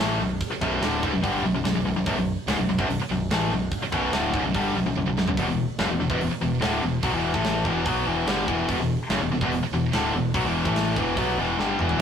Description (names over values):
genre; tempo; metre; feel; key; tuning
heavy metal; 145 BPM; 4/4; straight; unclear; A4 = 441 Hz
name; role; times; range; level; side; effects
heavy high-gain guitar; riff; 0.0-12.0 s; B1 to B3; -31 LUFS; right 8 dB; distortion
tight distorted guitar; riff; 0.0-12.0 s; B1 to B3; -24 LUFS; left 2 dB; distortion
growling picked electric bass; bass; 0.0-12.0 s; B0 to B1; -32 LUFS; right 1 dB; overdrive
tight metal drum kit; drums; 0.4-12.0 s; hi-hat, kick drum, snare drum, toms; -29 LUFS; right 2 dB; none
room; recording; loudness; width
moderate studio reverb, RT60 0.6 s; rough rehearsal-room recording; -22 LUFS; side -8 dB against mid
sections
0.0-12.0 A section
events
drum fill 5.0-5.4, 11.6-12.0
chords
0.0 Bm; 5.4 E5